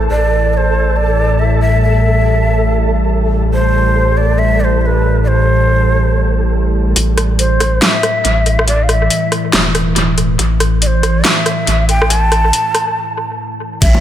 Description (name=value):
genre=deep dubstep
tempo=140 BPM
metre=4/4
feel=swing 60% on 16ths, half-time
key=A minor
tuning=A4 = 441 Hz
part: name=bowed-like drone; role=sustained chords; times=0.0-14.0 s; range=A2 to G3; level=-18 LUFS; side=equal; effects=built-in reverb
part: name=saturated sub bass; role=bass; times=0.0-14.0 s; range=E1 to A1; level=-14 LUFS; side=equal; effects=none
part: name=flickering grainy texture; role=texture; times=0.0-7.0 s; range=A4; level=-22 LUFS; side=right 2 dB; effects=built-in reverb
part: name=breathy hollow shakuhachi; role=melody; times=0.1-14.0 s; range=B4 to A5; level=-17 LUFS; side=equal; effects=low-pass filter, dub echo
part: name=dubstep drum kit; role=drums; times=7.0-13.9 s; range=crash cymbal, hi-hat, rim click, snare drum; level=-15 LUFS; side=equal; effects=high-pass filter on hats, studio ambience, high-pass filter on snare, high-pass filter on cymbals, analog delay
part: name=electronic kick drum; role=drums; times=7.0-13.9 s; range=none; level=-16 LUFS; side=equal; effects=high-pass filter on kick, studio ambience
part: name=bongos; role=percussion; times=13.9-14.0 s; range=none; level=-17 LUFS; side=left 6 dB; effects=none
room=light reverb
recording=echo-heavy mix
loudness=-11 LUFS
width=side -11 dB against mid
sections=0.0-7.0 A section; 7.0-13.8 B section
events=build-up 7.0-13.8; filter sweep on synth drone 7.0-13.8; break 13.0-13.8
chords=0.0 Am; 7.0 A5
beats=| 0.10 0.53 0.96 1.39 | 1.82 2.25 2.68 3.10 | 3.53 3.96 4.39 4.82 | 5.25 5.68 6.11 6.53 | 6.96 7.39 7.82 8.25 | 8.68 9.11 9.53 9.96 | 10.39 10.82 11.25 11.68 | 12.11 12.53 12.96 13.39 | 13.82